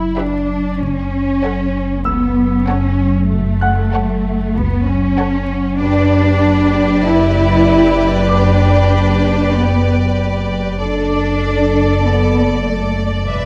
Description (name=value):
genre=cinematic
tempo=96 BPM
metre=4/4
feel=straight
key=F# phrygian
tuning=A4 = 440 Hz
part: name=marimba with soft mallets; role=riff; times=0.0-13.5 s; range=E2 to F#3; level=-22 LUFS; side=equal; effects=none
part: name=dark symphonic cello section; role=bass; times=0.0-13.5 s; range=G#3 to E4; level=-19 LUFS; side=equal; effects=none
part: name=dark symphonic double bass section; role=bass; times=0.0-13.5 s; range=E1 to C#2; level=-23 LUFS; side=equal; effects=none
part: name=deep rumbling drone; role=drone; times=0.0-13.5 s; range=F#1 to E2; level=-25 LUFS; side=equal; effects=built-in reverb
part: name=bright grand piano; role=texture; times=0.0-10.8 s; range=F#5 to F#6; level=-28 LUFS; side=equal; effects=none
part: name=warm symphonic violin section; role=melody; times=0.2-13.5 s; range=D5 to F#5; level=-25 LUFS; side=equal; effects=none
part: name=warm symphonic violin section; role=second line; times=0.2-13.5 s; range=G4 to D5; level=-24 LUFS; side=equal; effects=none
room=moderate scoring stage reverb, RT60 1.7 s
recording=vinyl crackle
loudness=-15 LUFS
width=mono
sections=0.0-13.5 A section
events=none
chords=0.0 Em/F#; 0.8 F#m; 5.8 G/F#; 10.8 D/F#